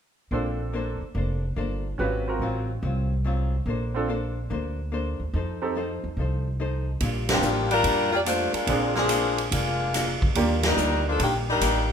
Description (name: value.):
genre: jazz, big band swing.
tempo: 144 BPM.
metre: 4/4.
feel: swing 67% on 8ths.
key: Bb major.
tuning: A4 = 441 Hz.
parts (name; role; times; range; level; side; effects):
archtop guitar, miked and amplified; accompaniment; 0.3-11.9 s; Ab2 to C5; -32 LUFS; left 3 dB; none.
bright upright piano; accompaniment; 0.3-11.0 s; Bb3 to D5; -29 LUFS; right 3 dB; none.
upright bass; bass; 0.3-11.9 s; F1 to F2; -28 LUFS; right 1 dB; none.
swinging big-band drum kit; drums; 7.0-11.7 s; hi-hat, kick drum, ride cymbal, snare drum; -27 LUFS; right 1 dB; none.
warm saxophone section; melody; 7.3-11.9 s; Eb3 to D5; -24 LUFS; left 2 dB; none.
room: moderate large studio reverb, RT60 1.3 s.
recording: minimal, uncompressed stereo recording.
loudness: -23 LUFS.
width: side -7 dB against mid.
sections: 0.3-7.0 A section; 7.0-11.9 B section.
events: band accent 7.2, 10.6.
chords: 0.3 Bbmaj9; 2.0 Ab13; 3.7 Bbmaj9; 5.3 F7; 7.0 Bb6; 8.7 Bb7; 10.4 Ebmaj7.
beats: | 0.32 0.74 1.16 1.58 | 2.00 2.41 2.83 3.25 | 3.67 4.09 4.51 4.92 | 5.34 5.76 6.18 6.60 | 7.01 7.43 7.85 8.27 | 8.69 9.10 9.52 9.94 | 10.36 10.77 11.19 11.61.